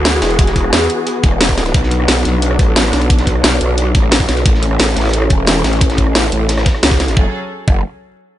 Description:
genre	dark technical drum and bass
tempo	177 BPM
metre	4/4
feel	straight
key	F# minor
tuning	A4 = 439 Hz
part	warm symphonic string section	sustained chords	0.0-7.3 s	E3 to A4	-20 LUFS	equal	sidechain pumping, low-pass filter
part	growl bass	bass	0.0-7.8 s	E1 to E2	-15 LUFS	equal	chorus, overdrive
part	crunchy breakbeat drum kit	drums	0.0-7.2 s	hi-hat, snare drum	-26 LUFS	equal	none
part	drum and bass drum kit	drums	0.1-7.2 s	hi-hat, rim click, snare drum	-16 LUFS	equal	small room reverb
part	electronic kick drum	drums	0.4-7.7 s	none	-13 LUFS	equal	small room reverb
room	little or no reverb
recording	nothing above 10.8 kHz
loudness	-11 LUFS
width	side -13 dB against mid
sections	0.0-7.2 A section; 7.2-8.4 B section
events	filter sweep on string section 0.0-7.2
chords	0.0 E; 1.7 Bm; 4.5 A; 7.2 F#m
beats	0.05 | 0.39 0.73 1.07 1.41 | 1.75 2.08 2.42 2.76 | 3.10 3.44 3.78 4.12 | 4.46 4.79 5.13 5.47 | 5.81 6.15 6.49 6.83 | 7.17 7.51

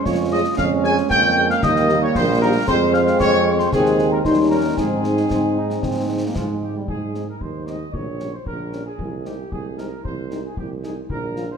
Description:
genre	military-style march for wind band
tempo	114 BPM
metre	2/4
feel	straight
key	Ab major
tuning	A4 = 440 Hz
part	dark trumpet section	melody	0.0-11.6 s	F4 to Ab5	-25 LUFS	right 1 dB	none
part	mellow hollow wooden piccolo	second line	0.0-6.6 s	Ab5 to Ab6	-24 LUFS	left 4 dB	none
part	clear trombone section	sustained chords	0.0-6.9 s	G3 to Eb4	-25 LUFS	right 2 dB	none
part	warm euphonium	second line	0.1-6.6 s	Bb3 to F4	-24 LUFS	right 4 dB	none
part	warm tuba	bass	0.1-11.5 s	Bb1 to Ab2	-24 LUFS	right 3 dB	none
part	concert snare drum, concert bass drum and clash cymbals	drums	0.1-11.5 s	none	-29 LUFS	left 1 dB	none
part	mellow French horn section	accompaniment	0.3-11.5 s	F3 to Ab4	-24 LUFS	left 5 dB	none
room	moderate concert hall reverb, RT60 2.3 s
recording	none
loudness	-17 LUFS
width	side -6 dB against mid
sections	0.0-6.9 A section; 6.9-11.6 B section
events	none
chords	0.0 Db/F; 0.6 Bbm7/F; 1.6 Eb; 2.7 Fm; 3.7 Ab/Eb; 4.3 Eb7; 4.8 Ab; 7.9 Gdim/Bb; 9.0 Ab/C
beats	0.06 | 0.58 1.10 | 1.63 2.15 | 2.68 3.21 | 3.73 4.25 | 4.78 5.31 | 5.83 6.36 | 6.88 7.41 | 7.94 8.46 | 8.99 9.52 | 10.04 10.57 | 11.10

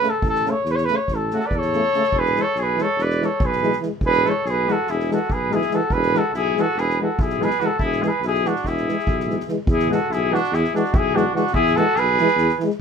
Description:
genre	balkan folk, Balkan brass band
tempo	286 BPM (eighths)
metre	9/8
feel	straight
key	E mixolydian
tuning	A4 = 438 Hz
part	mellow cornet	melody	0.0-12.6 s	F#4 to D5	-21 LUFS	equal	none
part	dark French horn	accompaniment	0.0-12.7 s	G#3 to A3	-25 LUFS	left 6 dB	none
part	mellow euphonium	accompaniment	0.0-12.7 s	C#3 to E3	-26 LUFS	right 7 dB	none
part	soft-mallet drum kit	percussion	0.0-12.8 s	kick drum, snare drum	-26 LUFS	equal	none
part	mellow tuba	bass	0.2-12.5 s	E1 to E2	-25 LUFS	equal	none
part	clear trumpet	second line	1.3-12.6 s	D4 to B4	-26 LUFS	right 2 dB	none
room	light reverb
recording	minimal, uncompressed stereo recording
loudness	-18 LUFS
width	side -6 dB against mid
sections	0.0-9.7 A section; 9.7-12.8 B section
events	none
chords	0.0 A; 2.1 E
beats	0.02 | 0.23 0.44 0.65 0.86 1.07 1.28 1.49 1.70 1.91 | 2.12 2.33 2.54 2.75 2.96 3.17 3.39 3.60 3.81 | 4.02 4.23 4.44 4.65 4.86 5.07 5.28 5.49 5.70 | 5.91 6.12 6.33 6.54 6.75 6.96 7.17 7.38 7.59 | 7.80 8.01 8.22 8.43 8.64 8.85 9.06 9.27 9.48 | 9.69 9.89 10.10 10.31 10.52 10.72 10.93 11.14 11.35 | 11.55 11.76 11.96 12.17 12.38 12.58

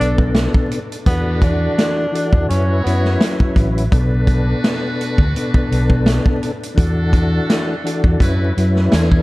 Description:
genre	hip hop, boom-bap hip-hop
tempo	84 BPM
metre	4/4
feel	swing 54% on 16ths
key	B minor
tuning	A4 = 440 Hz
part	breathy tenor saxophone	melody	0.0-3.2 s	B3 to D4	-23 LUFS	right 1 dB	high-pass filter, low-pass filter, dub echo
part	tonewheel organ	accompaniment	0.0-9.2 s	B2 to B4	-20 LUFS	left 1 dB	chorus vibrato, slow rotary speaker, high-pass filter, low-pass filter, dub echo
part	muted trumpet section	stabs	0.0-9.2 s	C#4 to C#5	-30 LUFS	right 1 dB	high-pass filter, low-pass filter, dub echo
part	fingered electric bass	bass	0.0-9.2 s	A1 to F#2	-17 LUFS	equal	none
part	vintage drum kit	drums	0.0-9.2 s	hi-hat, kick drum, snare drum	-17 LUFS	equal	none
room	small room ambience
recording	echo-heavy mix, vinyl crackle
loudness	-14 LUFS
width	side -20 dB against mid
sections	0.0-9.2 A section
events	none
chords	0.0 Bm7; 1.1 E9sus4; 2.5 F#7sus4; 3.9 Bm7; 6.8 E9sus4; 8.2 F#7sus4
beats	0.35 | 1.07 1.78 2.49 3.21 | 3.92 4.64 5.35 6.07 | 6.78 7.49 8.21 8.92

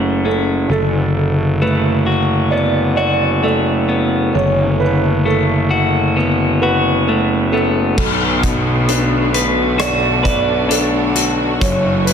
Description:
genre	post-rock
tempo	66 BPM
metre	4/4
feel	straight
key	D major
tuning	A4 = 441 Hz
part	clean electric guitar	arpeggios	0.0-12.1 s	D2 to B4	-17 LUFS	left 2 dB	tape echo, slapback echo
part	felt-muted upright piano	arpeggios	0.0-12.1 s	A4 to D5	-21 LUFS	right 4 dB	tape echo, slapback echo
part	fuzz picked electric bass	bass	0.0-12.1 s	F#1 to B1	-18 LUFS	equal	overdrive
part	rich symphonic string section	sustained chords	8.0-12.1 s	C#3 to F#4	-22 LUFS	right 1 dB	none
part	loose indie drum kit	drums	8.0-12.1 s	crash cymbal, hi-hat, kick drum, rim click	-19 LUFS	left 1 dB	none
room	wet concert hall reverb, RT60 2.0 s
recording	big arena sound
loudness	-13 LUFS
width	side -7 dB against mid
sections	0.0-8.0 A section; 8.0-12.1 B section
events	none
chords	0.0 F#m; 0.7 D6/F#; 8.0 Bm7; 11.6 F#m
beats	| 0.70 1.62 2.53 3.44 | 4.35 5.26 6.17 7.08 | 7.98 8.89 9.80 10.71 | 11.62

